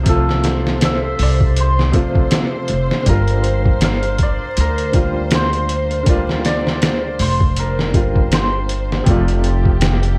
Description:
trip hop; 80 BPM; 4/4; swing 58% on 16ths; A4 = 440 Hz
hammered dulcimer; melody; 0.0-10.2 s; A4 to F5; -26 LUFS; equal; vintage 12-bit sampler grit, dub echo
clear upright piano; accompaniment; 0.0-10.2 s; C3 to F4; -25 LUFS; equal; tremolo
muted studio string section; sustained chords; 0.0-10.2 s; G4 to C5; -28 LUFS; equal
upright bass; bass; 0.0-10.2 s; F1 to D2; -21 LUFS; equal
trip hop sampler-style drum kit; drums; 0.1-10.2 s; hi-hat, kick drum, snare drum; -20 LUFS; equal
small room ambience; vinyl crackle; -16 LUFS; mono
0.0-10.2 A section
0.0 F; 3.1 Gm7; 9.1 F
| 0.07 0.82 1.57 2.32 | 3.07 3.82 4.57 5.32 | 6.07 6.82 7.57 8.32 | 9.07 9.82

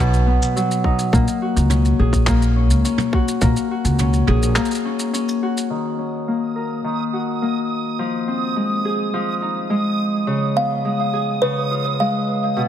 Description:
folktronica; 105 BPM; 4/4; straight; A4 = 441 Hz
Celtic harp; arpeggios; 0.0-12.7 s; B2 to B4; -20 LUFS; left 2 dB; low-pass filter, tape echo
upright bass; bass; 0.0-4.6 s; A#1 to C#2; -17 LUFS; equal
vintage brush drum kit; drums; 0.0-5.7 s; handclaps, shaker, toms; -26 LUFS; right 2 dB
electronic kick drum; drums; 0.8-3.5 s; -19 LUFS; equal; overdrive
backwards swelling texture; texture; 6.4-12.7 s; D#6; -27 LUFS; right 5 dB; built-in reverb
music box; second line; 10.6-12.3 s; B4 to E#5; -21 LUFS; equal; tape echo
light reverb, small room ambience; -17 LUFS; side -10 dB against mid
0.0-5.7 A section; 5.7-12.7 B section
break 4.6-5.7; filter sweep on harp 5.7-12.7
0.0 B; 1.1 F#add9/A#; 5.7 D#m7; 8.0 Fm7; 10.3 C#7
0.56 | 1.13 1.70 2.27 2.85 | 3.42 3.99 4.56 5.13 | 5.70 6.28 6.85 7.42 | 7.99 8.56 9.13 9.70 | 10.28 10.85 11.42 11.99 | 12.56

